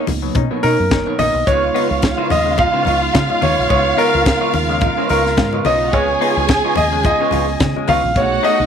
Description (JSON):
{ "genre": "disco", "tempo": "108 BPM", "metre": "4/4", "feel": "swing 56% on 16ths", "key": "unclear", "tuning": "A4 = 439 Hz", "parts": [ { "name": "electric guitar at the edge of break-up", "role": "accompaniment", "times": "0.0-8.7 s", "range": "A3 to D#5", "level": "-25 LUFS", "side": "right 15 dB", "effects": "none" }, { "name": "mellow clav", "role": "accompaniment", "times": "0.0-8.6 s", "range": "B2 to G#4", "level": "-24 LUFS", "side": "left 15 dB", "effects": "phaser" }, { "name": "mellow tonewheel organ", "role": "sustained chords", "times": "0.0-8.7 s", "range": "Db3 to F4", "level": "-25 LUFS", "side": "right 15 dB", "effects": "chorus vibrato, stopped rotary speaker" }, { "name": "deep dub fingered electric bass", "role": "bass", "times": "0.1-8.7 s", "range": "F#1 to Db3", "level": "-22 LUFS", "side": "equal", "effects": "none" }, { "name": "tight funk drum kit", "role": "drums", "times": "0.1-8.6 s", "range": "hi-hat, kick drum, snare drum", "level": "-21 LUFS", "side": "equal", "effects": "none" }, { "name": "congas", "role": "percussion", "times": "0.1-8.0 s", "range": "none", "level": "-26 LUFS", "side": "left 9 dB", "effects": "none" }, { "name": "clear concert grand piano", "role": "melody", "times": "0.6-8.7 s", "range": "A#4 to F5", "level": "-18 LUFS", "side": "left 1 dB", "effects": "none" }, { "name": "dark studio violin section", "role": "second line", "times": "1.5-8.7 s", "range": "Db4 to Ab5", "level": "-20 LUFS", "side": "equal", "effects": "none" } ], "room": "small room ambience", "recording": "1960s-style stereo with parts hard left and right", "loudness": "-13 LUFS", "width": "side -7 dB against mid", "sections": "0.0-1.5 A section; 1.5-8.7 B section", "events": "none", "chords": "0.0 Bmaj9; 1.5 Db7" }